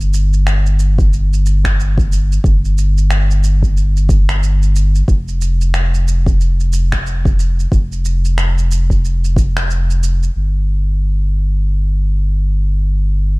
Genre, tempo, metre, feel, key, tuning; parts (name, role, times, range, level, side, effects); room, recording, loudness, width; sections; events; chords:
organic downtempo; 91 BPM; 4/4; swing 59% on 16ths; A4 = 440 Hz
warm sub bass; bass; 0.0-13.4 s; F1 to G1; -13 LUFS; equal; sidechain pumping
electronic shaker and finger snaps; drums; 0.0-10.3 s; -25 LUFS; right 1 dB; low-pass filter on perc, low-pass filter on snare, low-pass filter on room
electronic kick drum; drums; 1.0-9.5 s; -15 LUFS; equal
little or no reverb; dark, warm production; -12 LUFS; side -25 dB against mid
0.0-10.4 A section; 10.4-13.4 B section
kick drops out 9.7-10.4